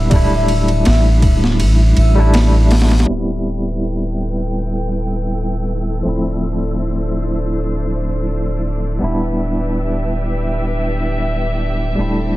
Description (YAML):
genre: trip hop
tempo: 81 BPM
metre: 4/4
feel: swing 54% on 16ths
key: D dorian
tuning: A4 = 439 Hz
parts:
  - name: pure breathy sine lead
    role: melody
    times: 0.0-2.5 s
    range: E5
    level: -25 LUFS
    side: left 2 dB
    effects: lush chorus, tape echo
  - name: barky tine electric piano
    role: accompaniment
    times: 0.0-12.4 s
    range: F3 to E4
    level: -21 LUFS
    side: equal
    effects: overdrive, tremolo, low-pass filter, tape echo
  - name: soft dub sub bass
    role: bass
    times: 0.0-12.4 s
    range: D1 to A1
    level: -17 LUFS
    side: equal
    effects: none
  - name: flickering grainy texture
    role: texture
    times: 0.0-12.4 s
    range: E4 to E6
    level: -31 LUFS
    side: right 1 dB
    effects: built-in reverb
  - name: boom bap sampler-style drum kit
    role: drums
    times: 0.1-3.1 s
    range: hi-hat, kick drum, ride cymbal, snare drum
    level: -18 LUFS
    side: equal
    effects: overdrive
  - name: warm chamber violin section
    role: sustained chords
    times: 3.1-12.4 s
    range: C4 to G5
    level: -25 LUFS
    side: equal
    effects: none
room: little or no reverb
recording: vinyl crackle, low-pass filter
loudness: -14 LUFS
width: side -17 dB against mid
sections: 0.0-3.1 A section; 3.1-12.4 B section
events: filter sweep on tine electric piano 3.1-12.4; filter sweep 3.1-12.4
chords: 0.1 Dsus24; 3.1 Am9/D; 6.0 Dm7; 9.0 Em7/D